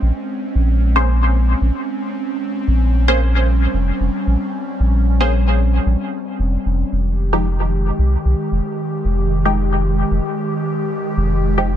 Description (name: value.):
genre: dub techno.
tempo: 113 BPM.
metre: 4/4.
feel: swing 53% on 16ths.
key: unclear.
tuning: A4 = 440 Hz.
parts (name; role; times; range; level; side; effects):
airy breathy pad; sustained chords; 0.0-11.8 s; Eb3 to G4; -22 LUFS; equal; chorus.
round analog bass; bass; 0.0-11.8 s; F1 to C2; -16 LUFS; equal; tube saturation.
filtered dub chord stab; stabs; 1.0-11.7 s; F3 to C5; -21 LUFS; left 1 dB; chorus, phaser, dub echo.
room: digital ambience.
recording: none.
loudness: -16 LUFS.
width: side -11 dB against mid.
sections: 0.0-11.8 A section.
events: none.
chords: 0.0 Bbm9; 6.9 Fm9.